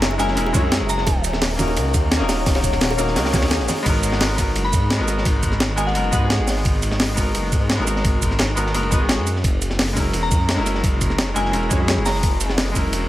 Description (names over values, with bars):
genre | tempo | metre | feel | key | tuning
liquid drum and bass | 172 BPM | 4/4 | straight | G# minor | A4 = 435 Hz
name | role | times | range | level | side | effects
bright concert grand piano | accompaniment | 0.0-13.1 s | G#3 to C#5 | -24 LUFS | left 1 dB | ping-pong delay
ethereal airy pad | sustained chords | 0.0-3.8 s | C#5 to A#5 | -29 LUFS | left 2 dB | ensemble chorus, built-in reverb, sidechain pumping
swelling detuned saw bass | bass | 0.0-13.1 s | D#1 to G#2 | -23 LUFS | equal | none
breakbeat sampler-style drum kit | drums | 0.0-13.0 s | cabasa, crash cymbal, hi-hat, snare drum | -23 LUFS | equal | none
crunchy breakbeat drum kit | drums | 0.0-13.0 s | hi-hat, ride cymbal, snare drum | -27 LUFS | equal | high-pass filter on cymbals, high-pass filter on hats, high-pass filter on snare, high-pass filter on room
bongos and congas | percussion | 0.1-3.8 s | none | -29 LUFS | right 2 dB | none
glassy synth bell | melody | 0.2-1.1, 4.6-6.4, 10.2-12.5 s | F#5 to B5 | -28 LUFS | left 1 dB | chorus, dub echo
electronic kick drum | drums | 0.5-12.8 s | none | -21 LUFS | equal | none
room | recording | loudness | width
small room reverb | none | -17 LUFS | side -14 dB against mid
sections
0.0-3.9 A section; 3.9-13.1 A section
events
drop 0.0-3.9, 3.9-13.1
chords
0.0 F#9; 1.1 D#m7; 3.9 G#m9; 9.3 F#9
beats
0.02 0.37 0.72 | 1.07 1.42 1.77 2.12 | 2.46 2.81 3.16 3.51 | 3.86 4.21 4.56 4.91 | 5.25 5.60 5.95 6.30 | 6.65 7.00 7.35 7.70 | 8.04 8.39 8.74 9.09 | 9.44 9.79 10.14 10.49 | 10.84 11.19 11.53 11.88 | 12.23 12.58 12.93